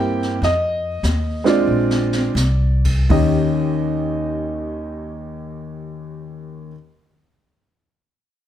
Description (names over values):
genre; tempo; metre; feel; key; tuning
jazz piano trio; 78-103 BPM; 4/4; swing 67% on 8ths; Eb mixolydian; A4 = 440 Hz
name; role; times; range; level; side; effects
warm upright piano; melody; 0.0-6.7 s; Eb2 to G5; -20 LUFS; equal; none
upright bass; bass; 0.0-6.7 s; Bb1 to G2; -21 LUFS; equal; none
jazz brush drum kit; drums; 0.2-3.3 s; brushed snare drum, crash cymbal, hi-hat, kick drum, snare drum; -26 LUFS; left 1 dB; none
room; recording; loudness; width
light reverb; none; -16 LUFS; side -10 dB against mid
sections
0.0-3.1 A section; 3.1-8.5 B section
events
slowing down 0.0-3.1; drum fill 1.7-2.4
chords
0.4 F7(no3); 1.7 Bb9; 3.1 Eb7